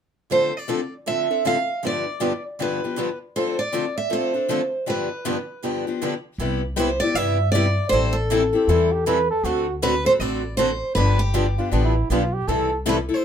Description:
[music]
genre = acoustic string swing (jazz manouche)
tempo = 158 BPM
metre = 4/4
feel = swing 61% on 8ths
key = C major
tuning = A4 = 440 Hz
[part]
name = picked steel-string acoustic guitar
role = melody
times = 0.3-13.2 s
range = G4 to F5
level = -23 LUFS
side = right 1 dB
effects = none
[part]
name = picked steel-string acoustic guitar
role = accompaniment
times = 0.3-13.2 s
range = G2 to A4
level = -25 LUFS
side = left 7 dB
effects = none
[part]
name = picked steel-string acoustic guitar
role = accompaniment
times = 0.3-13.0 s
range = G2 to A4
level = -29 LUFS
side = right 8 dB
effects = none
[part]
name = upright bass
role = bass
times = 6.4-13.1 s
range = G1 to G2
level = -24 LUFS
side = equal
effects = none
[part]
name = breathy flugelhorn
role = second line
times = 8.5-12.8 s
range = D4 to B4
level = -24 LUFS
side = right 4 dB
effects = none
[sound]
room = moderate studio ambience, RT60 0.5 s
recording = minimal, uncompressed stereo recording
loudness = -20 LUFS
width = side -8 dB against mid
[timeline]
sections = 0.3-6.4 A section; 6.4-13.2 B section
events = none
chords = 0.3 Dm9; 1.8 G7; 3.3 Dm7; 4.9 G7; 6.4 Cmaj7; 7.9 Am7; 9.4 D7; 11.0 G7; 12.5 C6

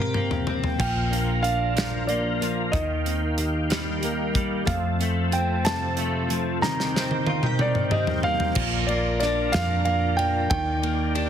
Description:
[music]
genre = six-eight pop ballad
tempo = 62 BPM (dotted quarters)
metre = 6/8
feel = straight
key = Bb major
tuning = A4 = 440 Hz
[part]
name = warm concert grand piano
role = melody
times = 0.0-11.3 s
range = Bb4 to Bb5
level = -28 LUFS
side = right 2 dB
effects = none
[part]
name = direct-recorded clean electric guitar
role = accompaniment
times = 0.0-11.3 s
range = F2 to G4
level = -28 LUFS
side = equal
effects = double-tracked left and right
[part]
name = modern studio drum kit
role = drums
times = 0.1-11.3 s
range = crash cymbal, hi-hat, kick drum, ride cymbal, snare drum, toms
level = -28 LUFS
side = equal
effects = none
[part]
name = percussive tonewheel organ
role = sustained chords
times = 0.8-11.3 s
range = Eb3 to Bb5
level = -32 LUFS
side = equal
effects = overdrive, chorus vibrato, slow rotary speaker
[part]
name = fingerpicked plugged-in steel-string acoustic guitar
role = arpeggios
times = 0.8-11.3 s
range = Eb3 to G4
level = -33 LUFS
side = left 4 dB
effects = none
[part]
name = vintage muted fingered electric bass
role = bass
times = 0.8-11.3 s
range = Bb1 to F2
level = -28 LUFS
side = equal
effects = none
[sound]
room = light reverb, studio ambience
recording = heavily compressed radio sound, multiband compression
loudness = -22 LUFS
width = side -9 dB against mid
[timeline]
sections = 0.8-8.6 A section; 8.6-11.3 B section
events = drum fill 0.0-0.8, 6.6-8.6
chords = 0.0 C5; 0.8 Bb; 2.7 Eb; 4.7 F; 6.6 Cm7; 8.6 Bb; 10.5 Ebmaj7

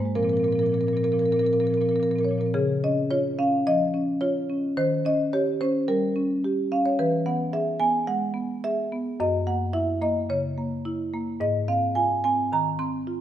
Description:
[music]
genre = classical, contemporary piece for solo marimba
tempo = 108 BPM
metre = 4/4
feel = rubato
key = unclear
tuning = A4 = 439 Hz
[part]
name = marimba with medium mallets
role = solo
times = 0.0-13.2 s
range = Gb2 to C6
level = -22 LUFS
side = equal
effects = none
[sound]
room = moderate recital hall reverb, RT60 1.8 s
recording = none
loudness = -22 LUFS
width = side -11 dB against mid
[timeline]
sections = 0.0-2.5 A section; 2.5-13.2 B section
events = none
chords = 0.1 Bbsus2; 2.5 Dbadd9; 4.8 Eb7; 7.0 Eadd9; 9.2 Gb7; 11.4 Ab6

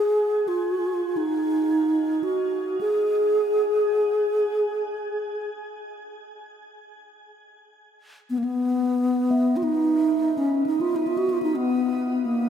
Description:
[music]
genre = world meditative, free-time meditation music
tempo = free time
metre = none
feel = none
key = G# dorian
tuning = A4 = 442 Hz
[part]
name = breathy bass flute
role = melody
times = 0.0-12.5 s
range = A#3 to G#4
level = -21 LUFS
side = equal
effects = shimmer reverb
[part]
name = bronze singing bowl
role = texture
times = 9.3-12.5 s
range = B3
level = -31 LUFS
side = equal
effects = shimmer reverb
[sound]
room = wet church reverb, RT60 3.4 s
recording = none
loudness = -21 LUFS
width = side -8 dB against mid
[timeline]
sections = 0.0-12.5 A section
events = none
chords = none

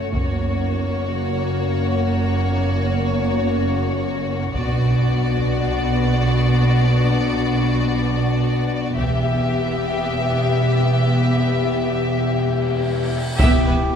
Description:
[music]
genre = cinematic, epic orchestral film score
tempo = free time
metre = none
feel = none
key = E dorian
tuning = A4 = 441 Hz
[part]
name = rich chamber violin section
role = melody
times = 0.0-14.0 s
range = B4 to E5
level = -26 LUFS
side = left 4 dB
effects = none
[part]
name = rich studio violin section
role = second line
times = 0.0-13.7 s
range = E4 to G4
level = -28 LUFS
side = left 5 dB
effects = none
[part]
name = rich symphonic viola section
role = accompaniment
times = 0.0-13.8 s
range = A#3 to B3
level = -28 LUFS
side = right 3 dB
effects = none
[part]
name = warm French horn section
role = sustained chords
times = 0.0-14.0 s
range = A#3 to G4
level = -26 LUFS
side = left 7 dB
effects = none
[part]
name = clear symphonic double bass section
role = bass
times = 0.0-13.7 s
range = E1 to B1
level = -22 LUFS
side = right 2 dB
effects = none
[part]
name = rich symphonic cello section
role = bass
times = 0.0-13.7 s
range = E2 to B2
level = -25 LUFS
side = right 2 dB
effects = none
[part]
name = taiko ensemble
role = drums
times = 0.1-1.2, 4.5-5.6, 9.0-10.0, 13.4-13.9 s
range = none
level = -22 LUFS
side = equal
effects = none
[part]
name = cymbal swell and impact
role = sound effects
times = 12.3-14.0 s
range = none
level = -32 LUFS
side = equal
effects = none
[part]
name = mellow trumpet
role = stabs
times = 13.4-14.0 s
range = G4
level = -25 LUFS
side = equal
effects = none
[sound]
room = wet recital hall reverb, RT60 1.6 s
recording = recorded in a church or concert hall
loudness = -17 LUFS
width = side -7 dB against mid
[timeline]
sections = 0.0-13.4 A section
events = build-up 0.0-13.4; cymbal swell 12.3-13.4; impact 13.4-14.0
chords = 0.1 F#; 4.5 Bm; 9.0 Em

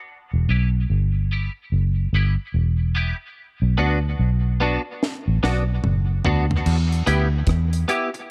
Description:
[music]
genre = dub reggae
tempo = 73 BPM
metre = 4/4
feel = swing 62% on 16ths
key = E minor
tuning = A4 = 440 Hz
[part]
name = vintage muted fingered electric bass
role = bass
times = 0.3-7.8 s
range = E1 to E2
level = -22 LUFS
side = equal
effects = none
[part]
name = clean electric guitar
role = accompaniment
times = 0.5-8.2 s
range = B3 to G4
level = -28 LUFS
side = equal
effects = ensemble chorus, high-pass filter, low-pass filter, tape echo
[part]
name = deep reggae drum kit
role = drums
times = 5.0-8.3 s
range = crash cymbal, hi-hat, kick drum, rim click, snare drum, toms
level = -29 LUFS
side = equal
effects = none
[sound]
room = studio reverb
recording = none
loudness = -22 LUFS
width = mono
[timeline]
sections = 0.0-6.7 A section; 6.7-8.3 B section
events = filter sweep on clean electric guitar 0.0-6.7; drum fill 5.0-6.7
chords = 0.1 Em; 3.4 Bm; 6.7 Em

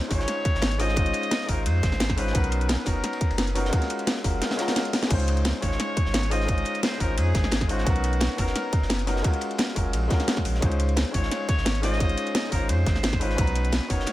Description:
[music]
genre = liquid drum and bass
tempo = 174 BPM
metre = 4/4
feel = straight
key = Db major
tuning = A4 = 440 Hz
[part]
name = warm grand piano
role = accompaniment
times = 0.0-14.1 s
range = Ab3 to Bb5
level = -29 LUFS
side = left 2 dB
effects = none
[part]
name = trumpet with straight mute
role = melody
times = 0.1-3.6, 5.6-9.1, 11.1-14.1 s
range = Gb4 to Eb5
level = -32 LUFS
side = left 1 dB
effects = dub echo
[part]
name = warm sub bass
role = bass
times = 0.1-14.1 s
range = Gb1 to F2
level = -26 LUFS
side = equal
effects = none
[part]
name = crunchy breakbeat drum kit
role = drums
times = 0.1-14.1 s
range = ride cymbal, snare drum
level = -36 LUFS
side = equal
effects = high-pass filter on cymbals, high-pass filter on snare, high-pass filter on room
[part]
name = electronic kick drum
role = drums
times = 0.1-14.0 s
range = none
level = -25 LUFS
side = equal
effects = none
[part]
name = garage drum kit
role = drums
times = 0.1-14.1 s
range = crash cymbal, hi-hat, snare drum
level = -28 LUFS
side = equal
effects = none
[sound]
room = small room ambience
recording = none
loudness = -22 LUFS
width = side -15 dB against mid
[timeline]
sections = 0.0-14.1 A section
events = drum fill 4.4-5.1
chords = 0.0 Dbmaj9; 2.3 Cbmaj9; 3.7 Gbmaj9; 5.1 Dbmaj9; 7.9 Cbmaj9; 9.2 Gbmaj9; 10.6 Dbmaj9; 13.4 Cbmaj9

